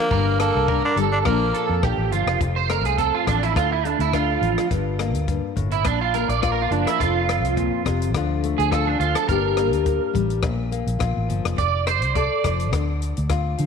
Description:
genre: highlife guitar band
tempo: 105 BPM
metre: 4/4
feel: swing 54% on 16ths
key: F major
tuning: A4 = 440 Hz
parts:
  - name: growling tenor saxophone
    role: melody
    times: 0.0-1.8 s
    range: Bb3 to D4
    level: -24 LUFS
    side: left 1 dB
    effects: tape echo
  - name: nylon-string guitar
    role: accompaniment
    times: 0.0-13.7 s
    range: F2 to A4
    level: -26 LUFS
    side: left 11 dB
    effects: none
  - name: electric guitar at the edge of break-up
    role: arpeggios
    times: 0.1-12.7 s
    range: D4 to D5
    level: -23 LUFS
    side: right 10 dB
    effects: ensemble chorus, tape echo
  - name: vintage muted fingered electric bass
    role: bass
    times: 0.1-13.7 s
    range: F1 to D3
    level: -24 LUFS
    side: equal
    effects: none
  - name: compact cocktail drum kit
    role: drums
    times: 0.1-13.7 s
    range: hi-hat, kick drum, rim click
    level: -28 LUFS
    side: left 3 dB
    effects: none
room: moderate echo chamber reverb, RT60 2.4 s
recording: 1960s-style stereo with parts hard left and right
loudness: -19 LUFS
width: side -6 dB against mid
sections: 0.0-2.4 A section; 2.4-13.7 B section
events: clean electric guitar solo 2.4-13.7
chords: 0.1 Gm; 1.3 Bb; 2.4 F; 3.6 Dm; 4.7 Gm; 5.8 Bb5; 7.0 F5; 8.1 Dm; 9.3 Gm; 10.4 Bb5; 11.6 F; 12.7 Dm

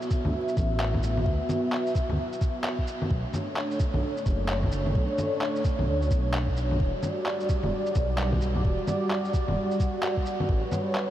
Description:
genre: future garage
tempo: 130 BPM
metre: 4/4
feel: swing 62% on 16ths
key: E dorian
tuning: A4 = 440 Hz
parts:
  - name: dark analog pad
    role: sustained chords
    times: 0.0-11.1 s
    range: G3 to E5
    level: -29 LUFS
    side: right 1 dB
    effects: chorus, sidechain pumping
  - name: electronic shaker, bongos and handclaps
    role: drums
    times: 0.0-11.1 s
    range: none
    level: -32 LUFS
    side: left 1 dB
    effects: none
  - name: electronic kick drum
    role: drums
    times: 0.1-10.6 s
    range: none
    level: -27 LUFS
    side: equal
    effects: none
  - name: dark detuned saw bass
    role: bass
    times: 0.3-10.6 s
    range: E1 to D2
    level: -28 LUFS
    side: equal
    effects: sidechain pumping
room: moderate huge ambient reverb, RT60 8.2 s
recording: dreamy mix soaked in reverb, vinyl crackle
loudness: -24 LUFS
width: side -12 dB against mid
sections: 0.0-11.1 A section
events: none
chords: 0.0 D69 (rootless); 3.1 Bm9; 6.8 Em9 (rootless); 10.5 A13

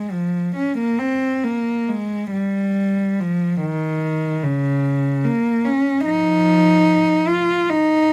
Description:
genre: classical, free, expressive piece for unaccompanied cello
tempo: 67-78 BPM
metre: 3/4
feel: rubato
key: unclear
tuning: A4 = 442 Hz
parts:
  - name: warm cello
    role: solo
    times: 0.0-8.1 s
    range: Db3 to F4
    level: -19 LUFS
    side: equal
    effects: none
room: light reverb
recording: close, detailed microphones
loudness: -19 LUFS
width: mono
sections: 0.0-8.1 A section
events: none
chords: none

